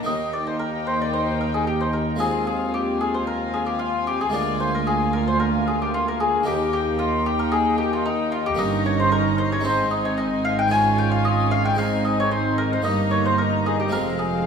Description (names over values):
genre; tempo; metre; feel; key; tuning
classical, baroque-style concerto movement with solo episodes; 112 BPM; 4/4; straight; Eb major, Ab major from 8.6 s; A4 = 441 Hz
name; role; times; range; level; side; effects
warm chamber violin section; melody; 0.0-14.5 s; F5 to Bb5; -34 LUFS; left 3 dB; none
warm studio violin section; second line; 0.0-14.5 s; C4 to F4; -28 LUFS; left 5 dB; none
dark chamber viola section; accompaniment; 0.0-14.5 s; Ab3 to Db4; -30 LUFS; left 1 dB; none
harpsichord; accompaniment; 0.0-14.5 s; D2 to F4; -30 LUFS; right 3 dB; none
mandolin; melody; 0.1-14.4 s; Eb4 to Ab5; -23 LUFS; left 2 dB; none
dark chamber cello section; bass; 0.1-14.5 s; D2 to Ab2; -28 LUFS; right 4 dB; none
dark studio double bass section; bass; 0.1-14.5 s; F1 to Eb2; -29 LUFS; right 6 dB; none
room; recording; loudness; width
moderate scoring stage reverb, RT60 1.6 s; minimal, uncompressed stereo recording; -19 LUFS; side -6 dB against mid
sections
0.1-14.5 A section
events
none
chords
0.1 Eb; 2.2 Fm7/Eb; 4.3 Bb7/D; 6.5 Eb; 8.6 Eb7/G; 9.7 Ab; 10.7 Db/Ab; 11.8 Ab; 12.9 Eb/G; 13.9 Fm